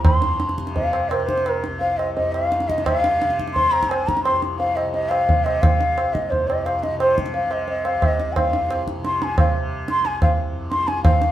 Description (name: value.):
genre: indian classical, Hindustani.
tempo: 174 BPM.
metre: 4/4.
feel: straight.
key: C raga malkauns.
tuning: A4 = 441 Hz.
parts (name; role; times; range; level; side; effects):
breathy mellow bansuri; melody; 0.0-11.3 s; Bb4 to C6; -20 LUFS; left 1 dB; none.
tanpura; drone; 0.0-11.3 s; C2 to C3; -30 LUFS; left 1 dB; none.
tabla; percussion; 0.0-11.3 s; none; -22 LUFS; right 2 dB; none.
room: wet stone room reverb, RT60 1.1 s.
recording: band playing live in one room.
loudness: -18 LUFS.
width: side -12 dB against mid.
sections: 0.0-11.0 A section.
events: speeding up 0.0-11.3.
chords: none.